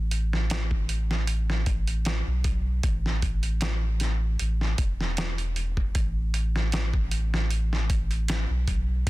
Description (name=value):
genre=trip hop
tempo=77 BPM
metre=4/4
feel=swing 54% on 16ths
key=unclear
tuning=A4 = 440 Hz
part: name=warm sub bass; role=bass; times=0.0-9.1 s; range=E1 to B1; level=-26 LUFS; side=equal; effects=tube saturation
part: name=dusty soul sampler-style drum kit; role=drums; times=0.1-9.1 s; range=hi-hat, kick drum, snare drum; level=-28 LUFS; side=equal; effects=none
room=little or no reverb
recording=dense, heavily limited modern master, faint mains hum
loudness=-24 LUFS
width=side -18 dB against mid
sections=0.0-9.1 A section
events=none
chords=none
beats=0.50 1.28 2.06 | 2.83 3.61 4.39 5.17 | 5.95 6.73 7.51 8.29 | 9.07